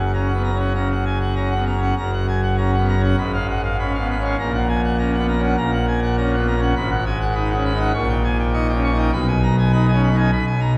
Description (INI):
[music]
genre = classical, organ toccata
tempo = 100 BPM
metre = 4/4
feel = straight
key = F# major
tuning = A4 = 443 Hz
[part]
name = pipe organ, full organ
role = solo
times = 0.0-10.8 s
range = F#1 to C#6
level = -20 LUFS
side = equal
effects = none
[sound]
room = wet church reverb, RT60 2.6 s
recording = heard from further back in the room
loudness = -20 LUFS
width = mono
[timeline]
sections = 0.0-2.0 A section; 2.0-10.8 A section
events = none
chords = 0.0 F#; 3.2 C#7/G#; 4.4 F#/A#; 6.8 G#m7; 8.0 D#7/A#; 9.1 G#m/B